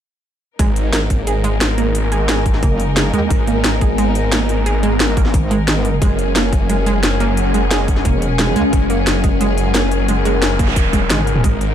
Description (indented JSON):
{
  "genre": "dark technical drum and bass",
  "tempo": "177 BPM",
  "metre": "4/4",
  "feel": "straight",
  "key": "G# minor",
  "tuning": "A4 = 440 Hz",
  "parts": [
    { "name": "rich symphonic string section", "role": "sustained chords", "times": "0.6-11.7 s", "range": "F#3 to A#4", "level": "-24 LUFS", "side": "left 2 dB", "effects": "sidechain pumping" },
    { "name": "analog pluck", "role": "arpeggios", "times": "0.6-11.5 s", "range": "G#3 to G#4", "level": "-22 LUFS", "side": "right 4 dB", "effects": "chorus, cassette tape, sidechain pumping, ping-pong delay" },
    { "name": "snarling distorted saw bass", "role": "bass", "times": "0.6-11.7 s", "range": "E1 to G#1", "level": "-18 LUFS", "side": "equal", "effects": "distortion, overdrive, sidechain pumping" },
    { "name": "drum and bass drum kit", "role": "drums", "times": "0.6-11.7 s", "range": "hi-hat, snare drum, toms", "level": "-20 LUFS", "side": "equal", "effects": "studio reverb" },
    { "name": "electronic kick drum", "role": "drums", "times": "0.6-11.5 s", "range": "none", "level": "-16 LUFS", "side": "equal", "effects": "studio reverb" },
    { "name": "warbly tape-like pad", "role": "texture", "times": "1.3-11.7 s", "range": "B3 to G#5", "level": "-23 LUFS", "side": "left 2 dB", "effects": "chorus, built-in reverb, phaser, sidechain pumping" },
    { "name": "metallic wobble bass", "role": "bass", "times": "2.6-3.3, 5.3-6.0, 8.1-8.7 s", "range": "E1 to D#2", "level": "-18 LUFS", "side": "equal", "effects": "chorus" },
    { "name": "noise sweep", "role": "sound effects", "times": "10.4-11.4 s", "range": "none", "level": "-25 LUFS", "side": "right 4 dB", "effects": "none" }
  ],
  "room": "light reverb",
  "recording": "dark, warm production",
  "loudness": "-13 LUFS",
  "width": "side -9 dB against mid",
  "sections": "0.6-11.7 A section",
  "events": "noise sweep 10.4-11.4; drum fill 10.9-11.4",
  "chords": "0.6 G#madd9; 6.0 F#",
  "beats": "| 0.59 0.93 1.27 1.61 | 1.95 2.29 2.63 2.97 | 3.31 3.64 3.98 4.32 | 4.66 5.00 5.34 5.68 | 6.02 6.36 6.70 7.03 | 7.37 7.71 8.05 8.39 | 8.73 9.07 9.41 9.75 | 10.09 10.42 10.76 11.10 | 11.44"
}